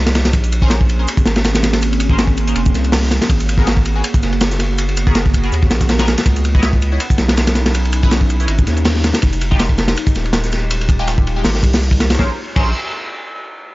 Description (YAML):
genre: drum and bass, jungle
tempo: 162 BPM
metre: 4/4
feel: swing 54% on 16ths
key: Bb phrygian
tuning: A4 = 440 Hz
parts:
  - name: warbly tape-like pad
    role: sustained chords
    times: 0.0-12.4 s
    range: Ab3 to Ab4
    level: -25 LUFS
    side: right 1 dB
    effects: chorus, built-in reverb, phaser
  - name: saturated sub bass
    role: bass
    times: 0.0-12.7 s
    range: Eb1 to Eb2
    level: -17 LUFS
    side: equal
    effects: none
  - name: breakbeat sampler-style drum kit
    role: drums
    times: 0.1-12.2 s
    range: hi-hat, shaker, snare drum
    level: -29 LUFS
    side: right 1 dB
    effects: high-pass filter on perc, high-pass filter on hats, high-pass filter on snare
  - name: crunchy breakbeat drum kit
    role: drums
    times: 0.1-12.6 s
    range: crash cymbal, hi-hat, kick drum, ride cymbal, snare drum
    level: -15 LUFS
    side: equal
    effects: none
  - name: band-passed chord stab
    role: stabs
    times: 0.6-12.7 s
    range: Ab3 to Eb5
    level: -26 LUFS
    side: left 1 dB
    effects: phaser, analog chorus, dub echo
room: small room ambience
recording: dry, gritty hardware recording, nothing above 7.6 kHz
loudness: -13 LUFS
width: side -19 dB against mid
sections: 0.0-12.2 A section; 12.2-13.7 B section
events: drop 0.0-12.2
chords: 0.3 Bbm9; 3.3 Abm9; 6.3 Dbm9; 9.2 Fm9; 12.2 Bbm9